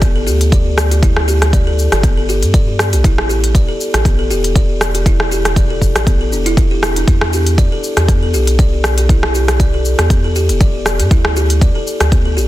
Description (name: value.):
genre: afro house.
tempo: 119 BPM.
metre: 4/4.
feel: swing 54% on 16ths.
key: E minor.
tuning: A4 = 440 Hz.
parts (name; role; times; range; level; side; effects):
buzzing kalimba; arpeggios; 0.0-12.5 s; B3 to D5; -19 LUFS; equal; vintage 12-bit sampler grit, sidechain pumping, digital delay.
round analog bass; bass; 0.0-12.5 s; E1 to G2; -16 LUFS; equal; sidechain pumping.
afro-pop drum kit; drums; 0.0-12.5 s; hi-hat, rim click, shaker; -18 LUFS; left 1 dB; soft clipping on snare.
electronic kick drum; drums; 0.0-12.2 s; none; -12 LUFS; equal; none.
room: little or no reverb.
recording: dense, heavily limited modern master.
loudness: -11 LUFS.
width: side -15 dB against mid.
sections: 0.0-12.5 A section.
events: none.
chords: 0.0 G5; 3.0 Em7; 11.1 Dsus4.